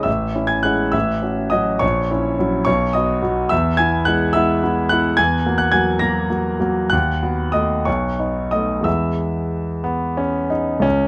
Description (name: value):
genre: classical, romantic character piece for solo piano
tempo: 58-74 BPM (dotted quarters)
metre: 6/8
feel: rubato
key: E major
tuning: A4 = 440 Hz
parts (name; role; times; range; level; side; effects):
- warm concert grand piano; solo; 0.0-11.1 s; A1 to A#6; -19 LUFS; equal; none
room: little or no reverb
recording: close, detailed microphones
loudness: -19 LUFS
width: mono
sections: 0.0-10.8 A section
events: none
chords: 0.1 Amaj7; 0.9 F#m/A; 1.8 F#7/A#; 2.7 B; 3.5 E; 5.2 F#7/E; 6.9 B7/D#; 7.9 B7; 8.9 E